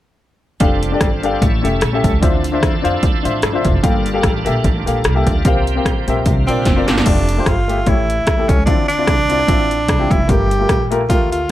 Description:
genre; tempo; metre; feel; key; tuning
uptempo gospel; 149 BPM; 4/4; swing 55% on 8ths; F major; A4 = 442 Hz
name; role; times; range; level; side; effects
warm baby grand piano; accompaniment; 0.6-11.4 s; G2 to F5; -20 LUFS; left 4 dB; none
bright tonewheel organ; sustained chords; 0.6-7.1 s; D3 to A4; -24 LUFS; right 3 dB; fast rotary speaker, overdrive, chorus vibrato
upright bass; bass; 0.6-11.4 s; F1 to F2; -20 LUFS; equal; none
80s electronic pad drums; drums; 0.6-11.4 s; crash cymbal, hi-hat, kick drum, rim click, snare drum; -17 LUFS; equal; none
breathy tenor saxophone; melody; 6.5-11.5 s; C4 to G4; -18 LUFS; right 2 dB; none
room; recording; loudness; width
light reverb; dark, warm production; -13 LUFS; side -14 dB against mid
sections
0.6-7.1 A section; 7.1-11.5 B section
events
drum fill 6.7-7.1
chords
0.6 F69; 1.4 A7; 2.2 Dm9; 3.8 Gm9; 5.4 C7sus4; 6.3 C9sus4; 7.1 F69; 7.9 A7; 8.7 Dm9; 10.3 Gm9

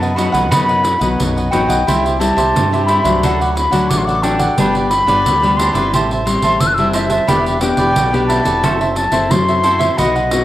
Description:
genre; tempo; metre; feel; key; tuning
samba and choro; 89 BPM; 4/4; straight; unclear; A4 = 441 Hz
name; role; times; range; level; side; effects
mellow silver concert flute; second line; 0.0-10.4 s; D#5 to F#6; -17 LUFS; left 1 dB; cassette tape
cavaquinho; accompaniment; 0.0-10.4 s; D4 to A5; -19 LUFS; right 3 dB; cassette tape
nylon-string guitar; accompaniment; 0.0-10.4 s; F#2 to A4; -19 LUFS; left 3 dB; cassette tape
modern bright fingered electric bass; bass; 0.0-10.4 s; E1 to G2; -22 LUFS; equal; none
pandeiro; percussion; 0.0-10.4 s; none; -21 LUFS; right 3 dB; none
room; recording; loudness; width
moderate lush hall reverb, RT60 2.4 s; home recording on cassette; -12 LUFS; side -14 dB against mid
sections
0.0-10.4 A section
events
flute solo 0.0-10.4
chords
0.0 B; 1.9 C; 3.2 D; 4.6 G; 5.9 Am7; 7.3 Em7; 8.6 F#m7b5

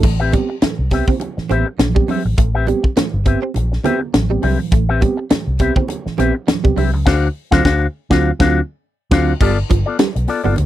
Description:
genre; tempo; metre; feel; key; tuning
funk; 102 BPM; 4/4; swing 56% on 16ths; unclear; A4 = 440 Hz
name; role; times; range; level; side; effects
electric guitar with an envelope filter; accompaniment; 0.0-10.6 s; B3 to E#5; -19 LUFS; left 6 dB; none
direct-recorded clean electric guitar; riff; 0.0-10.5 s; F3 to C4; -23 LUFS; right 8 dB; ensemble chorus
mellow reed electric piano; stabs; 0.0-9.3 s; A2 to G4; -22 LUFS; right 6 dB; fast tremolo
vintage muted fingered electric bass; bass; 0.0-10.7 s; G1 to D2; -18 LUFS; equal; none
tight funk drum kit; drums; 0.0-10.7 s; crash cymbal, hi-hat, kick drum, snare drum; -16 LUFS; left 1 dB; none
congas; percussion; 0.3-10.7 s; none; -26 LUFS; right 6 dB; none
room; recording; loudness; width
little or no reverb; dry, close 1970s-style studio recording; -14 LUFS; side -13 dB against mid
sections
0.0-9.4 A section; 9.4-10.7 B section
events
band accent 7.1-9.4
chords
0.0 Am9; 7.1 D7#9; 9.4 G9

